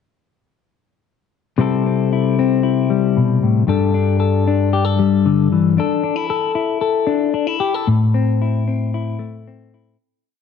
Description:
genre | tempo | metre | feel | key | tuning
highlife | 114 BPM | 4/4 | straight | C major | A4 = 440 Hz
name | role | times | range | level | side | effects
clean electric guitar | solo | 1.6-10.0 s | G2 to A4 | -15 LUFS | left 5 dB | wide subtle chorus
room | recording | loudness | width
moderate echo chamber reverb, RT60 1.8 s, digital ambience | nothing above 10.6 kHz | -15 LUFS | side -6 dB against mid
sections
1.6-10.0 groove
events
fade-out 7.9-10.0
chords
1.6 C6; 3.7 Gsus2; 5.8 Dsus2; 7.9 Am

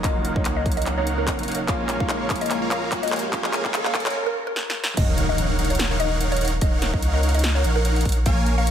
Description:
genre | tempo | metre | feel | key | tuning
future bass | 146 BPM | 4/4 | swing 55% on 16ths, half-time | Eb minor | A4 = 439 Hz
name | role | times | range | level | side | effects
mallet-like synth pluck | melody | 0.0-8.7 s | Bb4 to F5 | -29 LUFS | equal | chorus, phaser, sidechain pumping, tape echo
bright grand piano | accompaniment | 0.0-5.0 s | F3 to F4 | -33 LUFS | right 3 dB | sidechain pumping, dub echo
airy breathy pad | sustained chords | 0.0-4.1 s | Db3 to F4 | -33 LUFS | left 1 dB | chorus, sidechain pumping
supersaw chords | riff | 0.0-8.7 s | Bb3 to Db6 | -27 LUFS | right 1 dB | sidechain pumping, low-pass filter
saturated sub bass | bass | 0.0-8.7 s | Eb1 to Db2 | -25 LUFS | equal | sidechain pumping
big-room dance drum kit | drums | 0.0-8.7 s | crash cymbal, handclaps, hi-hat, snare drum | -27 LUFS | equal | studio reverb
electronic kick drum | drums | 0.0-8.4 s | none | -24 LUFS | equal | studio reverb
riser and impact | sound effects | 0.1-6.6 s | none | -31 LUFS | equal | none
room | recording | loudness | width
light reverb | high-pass filter | -20 LUFS | side -9 dB against mid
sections
0.0-5.0 A section; 5.0-8.7 B section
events
build-up 0.0-5.0; drum fill 0.0-4.2, 4.6-5.0; filter sweep on supersaw synth 0.0-5.0; filter sweep 0.0-5.0; riser 0.1-4.2; drop 5.0-8.7; impact 5.0-6.6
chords
0.0 Ebm7; 1.7 Bbm7; 5.0 Ebm7

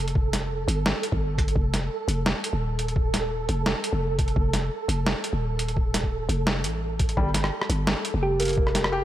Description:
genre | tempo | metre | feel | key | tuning
half-time drum and bass | 171 BPM | 4/4 | swing 53% on 16ths, half-time | unclear | A4 = 440 Hz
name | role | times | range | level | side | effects
growling 808-style bass | bass | 0.0-9.0 s | Eb1 to A1 | -26 LUFS | equal | none
flickering grainy texture | texture | 0.0-9.0 s | A4 | -32 LUFS | right 3 dB | built-in reverb
boom bap sampler-style drum kit | drums | 0.1-8.9 s | hi-hat, rim click, snare drum | -28 LUFS | equal | none
electronic kick drum | drums | 0.2-8.7 s | none | -25 LUFS | equal | none
felt-muted upright piano | arpeggios | 7.2-9.0 s | G3 to G4 | -30 LUFS | left 2 dB | digital delay
thumb-piano-like synth pluck | melody | 8.2-8.4 s | G4 | -27 LUFS | right 3 dB | chorus, dub echo
room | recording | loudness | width
light reverb, digital ambience | none | -23 LUFS | side -13 dB against mid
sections
0.0-9.0 A section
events
none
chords
0.0 Fadd9; 1.6 F; 7.2 Gm7

